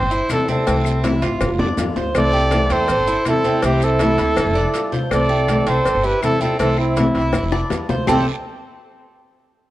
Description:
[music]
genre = latin, Cuban son and guajira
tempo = 162 BPM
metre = 4/4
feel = straight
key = C major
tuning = A4 = 437 Hz
[part]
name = breathy trumpet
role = melody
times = 0.0-8.3 s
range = C4 to D5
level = -20 LUFS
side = equal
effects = none
[part]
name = Cuban tres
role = arpeggios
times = 0.0-8.3 s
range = C4 to C5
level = -24 LUFS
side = right 2 dB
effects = none
[part]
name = upright bass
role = bass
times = 0.0-8.2 s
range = F1 to F2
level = -22 LUFS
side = equal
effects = none
[part]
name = congas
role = percussion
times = 0.1-8.2 s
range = none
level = -26 LUFS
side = left 1 dB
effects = none
[part]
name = maracas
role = percussion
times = 0.1-8.2 s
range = none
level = -39 LUFS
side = left 7 dB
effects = none
[part]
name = flamenco guitar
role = accompaniment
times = 0.3-8.2 s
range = C3 to F4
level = -24 LUFS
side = left 2 dB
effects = none
[part]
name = claves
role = percussion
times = 0.3-8.2 s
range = none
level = -34 LUFS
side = left 6 dB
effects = none
[part]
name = cowbell and bongos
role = percussion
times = 0.3-8.2 s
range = none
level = -26 LUFS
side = left 2 dB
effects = none
[part]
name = guiro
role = percussion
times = 0.3-8.2 s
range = none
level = -37 LUFS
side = right 6 dB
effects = none
[part]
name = reedy concert flute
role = second line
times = 2.2-8.2 s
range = C4 to A4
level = -24 LUFS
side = right 5 dB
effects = none
[sound]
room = light reverb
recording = worn, warbling old tape, cassette tape, warbly pitch drift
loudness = -15 LUFS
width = side -15 dB against mid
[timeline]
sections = 0.0-8.1 A section; 8.1-9.6 B section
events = drum fill 1.4-2.1, 7.3-8.1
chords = 0.0 Am7; 0.7 C6; 1.4 G7; 2.1 C6; 2.9 Am7; 3.6 C6; 4.4 G7; 5.1 C6; 5.9 Am7; 6.6 C6; 7.3 G7; 8.1 C6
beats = 0.30 | 0.67 1.04 1.41 1.78 | 2.15 2.52 2.89 3.26 | 3.63 4.00 4.37 4.74 | 5.11 5.48 5.85 6.22 | 6.59 6.96 7.33 7.71 | 8.07

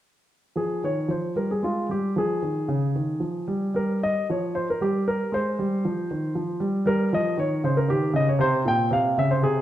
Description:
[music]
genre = classical, baroque-style suite movement for grand piano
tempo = 116 BPM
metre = 3/4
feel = rubato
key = F minor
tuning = A4 = 440 Hz
[part]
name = warm baby grand piano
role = solo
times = 0.6-9.6 s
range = Bb2 to G5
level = -22 LUFS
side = equal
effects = none
[sound]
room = wet recital hall reverb, RT60 1.3 s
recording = none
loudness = -22 LUFS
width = side -12 dB against mid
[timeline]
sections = 0.6-9.6 A section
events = none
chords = 0.6 Fm; 2.2 Db; 3.8 F9sus4; 5.3 Fm; 6.9 Dbadd9(#11); 8.4 Bbm13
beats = | 0.56 1.10 1.63 | 2.16 2.69 3.22 | 3.75 4.29 4.80 | 5.32 5.84 6.36 | 6.86 7.38 7.89 | 8.40 8.91 9.42

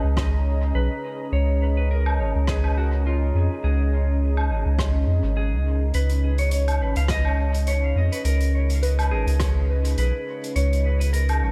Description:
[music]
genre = ambient dub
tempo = 104 BPM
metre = 4/4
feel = swing 55% on 16ths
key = Db mixolydian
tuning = A4 = 441 Hz
[part]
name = clean lap steel guitar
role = melody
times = 0.0-11.5 s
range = F4 to F5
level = -33 LUFS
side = equal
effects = dub echo
[part]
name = deep dark ambient pad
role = sustained chords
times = 0.0-11.5 s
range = Db4 to Bb5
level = -33 LUFS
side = equal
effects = chorus, built-in reverb
[part]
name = soft dub sub bass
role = bass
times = 0.0-11.5 s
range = Ab1 to F2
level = -23 LUFS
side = equal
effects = none
[part]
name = electronic kick drum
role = drums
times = 0.2-9.5 s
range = none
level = -32 LUFS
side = equal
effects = overdrive
[part]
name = soft-mallet drum kit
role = drums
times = 0.2-11.4 s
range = hi-hat, rim click, woodblock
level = -35 LUFS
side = equal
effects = dub echo
[part]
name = soft synth bell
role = arpeggios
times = 8.8-11.5 s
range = Cb5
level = -36 LUFS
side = equal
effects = chorus, phaser, dub echo
[sound]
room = light reverb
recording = none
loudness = -22 LUFS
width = mono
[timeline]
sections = 0.0-11.5 A section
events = none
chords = 0.0 Db9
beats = 0.17 0.75 | 1.33 1.90 2.48 3.06 | 3.63 4.21 4.79 5.37 | 5.94 6.52 7.09 7.67 | 8.25 8.83 9.40 9.98 | 10.56 11.13

